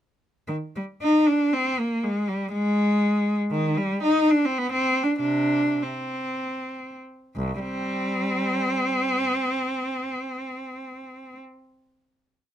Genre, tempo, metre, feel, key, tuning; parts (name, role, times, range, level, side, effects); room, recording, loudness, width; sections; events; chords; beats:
classical, baroque-style suite movement for unaccompanied cello; 73-122 BPM; 3/4; rubato; C minor; A4 = 439 Hz
rich cello; solo; 0.5-11.4 s; C2 to Eb4; -22 LUFS; equal
little or no reverb; close, detailed microphones; -22 LUFS; side -10 dB against mid
0.5-7.4 A section; 7.4-12.1 final chord
slowing down 2.8-7.4
| 0.50 1.03 1.54 | 2.04 2.54 3.03 | 3.53 4.05 4.59 | 5.20 5.85 6.57 | 7.37 8.15 8.94 | 9.71 10.50 11.30